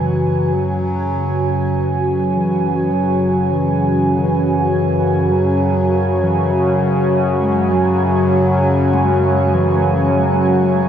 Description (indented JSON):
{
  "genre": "dark ambient drone",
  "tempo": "50 BPM",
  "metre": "4/4",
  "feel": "straight",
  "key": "unclear",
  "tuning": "A4 = 440 Hz",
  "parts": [
    { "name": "dark bass clarinet", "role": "melody", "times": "0.0-10.9 s", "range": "E3 to G#3", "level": "-21 LUFS", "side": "equal", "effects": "diffuse ambient delay" },
    { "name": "sweeping resonant pad", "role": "sustained chords", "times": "0.0-10.9 s", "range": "F#4 to G#5", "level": "-18 LUFS", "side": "right 1 dB", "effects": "chorus, shimmer reverb" },
    { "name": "gamelan-type bronze metallophone", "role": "arpeggios", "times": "0.0-10.9 s", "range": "G#3 to A3", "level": "-28 LUFS", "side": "left 5 dB", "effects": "none" },
    { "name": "analog drone", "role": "drone", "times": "0.0-10.9 s", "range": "F#2 to C#3", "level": "-17 LUFS", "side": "equal", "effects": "chorus" }
  ],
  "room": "wet huge ambient reverb, RT60 8.1 s",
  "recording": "in a vast, echoing space, cassette tape",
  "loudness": "-14 LUFS",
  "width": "side -9 dB against mid",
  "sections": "0.0-10.9 A section",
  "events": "none",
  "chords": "0.0 F#m"
}